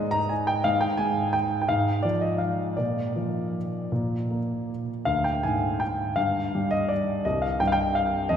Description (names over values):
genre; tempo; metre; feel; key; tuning
classical, piano waltz; 154-184 BPM; 3/4; rubato; unclear; A4 = 440 Hz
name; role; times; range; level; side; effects
warm grand piano; solo; 0.0-8.4 s; C2 to Bb5; -23 LUFS; equal; none
room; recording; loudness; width
wet cathedral reverb, RT60 5.1 s; recorded in a church or concert hall; -23 LUFS; side -8 dB against mid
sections
0.0-8.4 A section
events
none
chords
0.0 Ab5; 0.7 Fm/Ab; 2.8 Bb; 5.1 Ddim; 6.2 N.C.; 7.3 C5